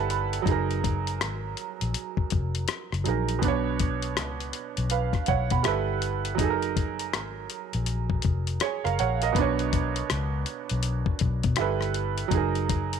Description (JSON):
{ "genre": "R&B, neo-soul", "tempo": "81 BPM", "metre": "4/4", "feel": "swing 62% on 16ths", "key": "F# major", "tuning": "A4 = 440 Hz", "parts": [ { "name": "clear grand piano", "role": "accompaniment", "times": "0.0-13.0 s", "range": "B2 to B5", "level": "-28 LUFS", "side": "right 12 dB", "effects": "none" }, { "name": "vintage muted fingered electric bass", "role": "bass", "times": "0.0-13.0 s", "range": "E#1 to B2", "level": "-29 LUFS", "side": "left 2 dB", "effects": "none" }, { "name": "dusty soul sampler-style drum kit", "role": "drums", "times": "0.1-13.0 s", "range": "hi-hat, kick drum, rim click", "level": "-29 LUFS", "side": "left 5 dB", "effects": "none" } ], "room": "little or no reverb", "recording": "1960s-style stereo", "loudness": "-24 LUFS", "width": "side -7 dB against mid", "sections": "0.0-13.0 A section", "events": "grand piano fill 0.0-0.5", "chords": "0.5 F#69; 3.4 Bmadd9; 5.6 G69; 6.4 F#69; 9.3 Bmadd9; 11.6 G69; 12.3 F#69" }